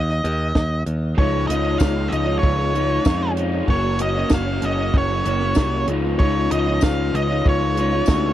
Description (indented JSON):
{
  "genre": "indie rock",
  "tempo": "96 BPM",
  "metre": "4/4",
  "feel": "straight",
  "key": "Db major",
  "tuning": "A4 = 443 Hz",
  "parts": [
    { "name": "octave-fuzz lead guitar", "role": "melody", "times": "0.0-8.3 s", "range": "Db5 to F5", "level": "-24 LUFS", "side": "right 1 dB", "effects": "distortion, tape echo" },
    { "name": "modern bright picked electric bass", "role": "bass", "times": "0.0-8.3 s", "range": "Gb1 to F2", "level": "-22 LUFS", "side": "equal", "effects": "none" },
    { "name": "compact cocktail drum kit", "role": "drums", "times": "0.1-8.2 s", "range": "hi-hat, kick drum, snare drum", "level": "-19 LUFS", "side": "equal", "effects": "none" },
    { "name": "raw garage guitar", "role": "riff", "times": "1.1-8.3 s", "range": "Gb2 to Db4", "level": "-27 LUFS", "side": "right 6 dB", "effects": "overdrive, analog chorus" },
    { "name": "electric guitar through a small old amp", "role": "riff", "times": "1.2-8.3 s", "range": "Db3 to Gb4", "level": "-25 LUFS", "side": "left 8 dB", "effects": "none" },
    { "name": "tambourine", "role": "percussion", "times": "1.8-8.2 s", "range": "none", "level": "-38 LUFS", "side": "left 17 dB", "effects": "none" }
  ],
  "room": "little or no reverb",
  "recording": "dry, close 1970s-style studio recording",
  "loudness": "-17 LUFS",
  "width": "side -12 dB against mid",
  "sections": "0.0-8.3 A section",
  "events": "none",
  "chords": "0.0 N.C.; 1.2 Dbadd9; 3.7 Gb; 5.9 Dbadd9",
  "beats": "0.55 | 1.17 1.80 2.43 3.05 | 3.68 4.31 4.94 5.56 | 6.19 6.82 7.45 8.08"
}